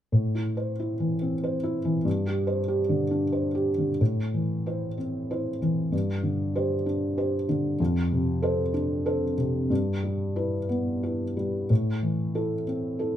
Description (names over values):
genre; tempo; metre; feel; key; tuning
classical; 87-98 BPM; 3/4; rubato; A minor; A4 = 440 Hz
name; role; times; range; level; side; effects
felt-muted upright piano; accompaniment; 0.1-13.2 s; F2 to C5; -24 LUFS; equal; none
room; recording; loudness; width
moderate studio reverb, RT60 0.7 s; none; -24 LUFS; side -11 dB against mid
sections
0.1-4.0 A section; 4.0-13.2 B section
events
none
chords
0.1 Am; 2.1 Gsus4; 4.0 Am; 5.9 Gsus4; 7.8 Dm7/F; 9.7 Em/G; 11.7 Am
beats
| 0.12 0.79 1.44 | 2.06 2.68 3.32 | 4.00 4.66 5.30 | 5.92 6.55 7.18 | 7.79 8.42 9.05 | 9.70 10.36 11.03 | 11.70 12.35 12.99